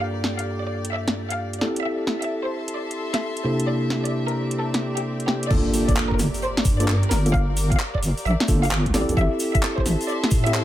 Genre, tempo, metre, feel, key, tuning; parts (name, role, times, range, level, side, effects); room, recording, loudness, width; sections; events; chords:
UK garage, two-step garage; 131 BPM; 4/4; swing 66% on 16ths; G dorian; A4 = 439 Hz
rich chamber violin section; melody; 0.0-10.6 s; G4 to F5; -30 LUFS; equal; vintage 12-bit sampler grit, dub echo
mellow tine electric piano; stabs; 0.0-10.6 s; G2 to A4; -26 LUFS; equal; dub echo
warm studio string section; texture; 0.0-10.6 s; C4 to C6; -33 LUFS; left 1 dB; sidechain pumping
garage drum kit; drums; 0.2-10.6 s; crash cymbal, handclaps, hi-hat, snare drum; -26 LUFS; equal
deep soft wobble bass; bass; 5.5-10.6 s; G1 to A2; -22 LUFS; equal; chorus, tube saturation, sidechain pumping
electronic kick drum; drums; 5.5-10.4 s; -22 LUFS; equal
tube shaker; percussion; 5.5-10.6 s; -36 LUFS; left 2 dB
impact; sound effects; 5.5-7.3 s; -29 LUFS; equal
light reverb; echo-heavy mix; -20 LUFS; side -13 dB against mid
0.0-5.5 A section; 5.5-10.6 B section
drop 5.5-10.6; impact 5.5-7.3
0.0 Gm9; 1.6 Am7; 3.4 C13; 5.5 Gm9; 8.9 Am7